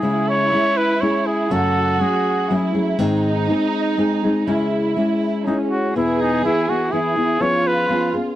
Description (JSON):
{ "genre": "mexican folk, mariachi", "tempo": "123 BPM", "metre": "3/4", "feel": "straight", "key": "C# minor", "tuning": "A4 = 440 Hz", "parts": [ { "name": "warm trumpet", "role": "melody", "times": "0.0-2.8, 5.5-8.1 s", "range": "D#4 to C#5", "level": "-20 LUFS", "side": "equal", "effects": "none" }, { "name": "nylon-string guitar", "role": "accompaniment", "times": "0.0-8.4 s", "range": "E2 to G#4", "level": "-20 LUFS", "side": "left 2 dB", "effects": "none" }, { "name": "dark studio violin section", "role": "second line", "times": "0.1-8.4 s", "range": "C#4 to G#4", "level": "-23 LUFS", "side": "right 5 dB", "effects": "none" } ], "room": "light reverb", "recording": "dry, close 1970s-style studio recording", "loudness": "-16 LUFS", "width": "side -13 dB against mid", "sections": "0.0-5.9 A section; 5.9-8.4 B section", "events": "none", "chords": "0.0 C#m; 1.5 F#madd9; 3.0 G#; 4.5 C#m; 5.9 E; 7.4 C#7/E#" }